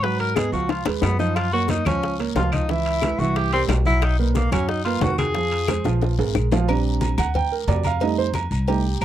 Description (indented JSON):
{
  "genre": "Afro-Cuban jazz",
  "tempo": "180 BPM",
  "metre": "4/4",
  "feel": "straight",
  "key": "unclear",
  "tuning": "A4 = 441 Hz",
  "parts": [
    { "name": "warm tenor saxophone", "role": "melody", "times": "0.0-6.0 s", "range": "F#3 to Cb5", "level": "-24 LUFS", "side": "left 1 dB", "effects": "slapback echo" },
    { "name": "dark grand piano", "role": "accompaniment", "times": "0.0-9.0 s", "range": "A#2 to G5", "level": "-25 LUFS", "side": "right 8 dB", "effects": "none" },
    { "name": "upright bass", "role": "bass", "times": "0.0-9.0 s", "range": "Ab1 to Ab2", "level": "-23 LUFS", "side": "left 1 dB", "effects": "none" },
    { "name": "bongos and cowbell", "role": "percussion", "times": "0.0-9.0 s", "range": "none", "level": "-27 LUFS", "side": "left 9 dB", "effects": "none" },
    { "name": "congas", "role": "percussion", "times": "0.0-9.0 s", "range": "none", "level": "-28 LUFS", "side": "left 3 dB", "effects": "none" },
    { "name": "guiro", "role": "percussion", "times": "0.0-9.0 s", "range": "none", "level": "-39 LUFS", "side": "left 16 dB", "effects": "none" },
    { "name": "timbales and agogo bells", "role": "percussion", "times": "0.2-9.0 s", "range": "none", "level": "-30 LUFS", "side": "right 5 dB", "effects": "none" },
    { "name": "claves", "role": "percussion", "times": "0.4-9.0 s", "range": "none", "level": "-35 LUFS", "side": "left 18 dB", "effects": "none" }
  ],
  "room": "light reverb",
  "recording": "dry, close 1970s-style studio recording",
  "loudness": "-19 LUFS",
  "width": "side -11 dB against mid",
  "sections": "0.0-6.7 A section; 6.7-9.0 A section",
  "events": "tenor saxophone solo 0.0-6.7; drum fill 0.4-1.4, 5.9-6.7; grand piano solo 6.7-9.0",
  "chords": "0.0 Db7; 1.4 Gbmaj7; 2.7 Dbm7; 3.4 C7; 4.0 Bmaj7; 5.4 Fm; 6.0 Bb5; 6.7 Bb69; 8.0 F7"
}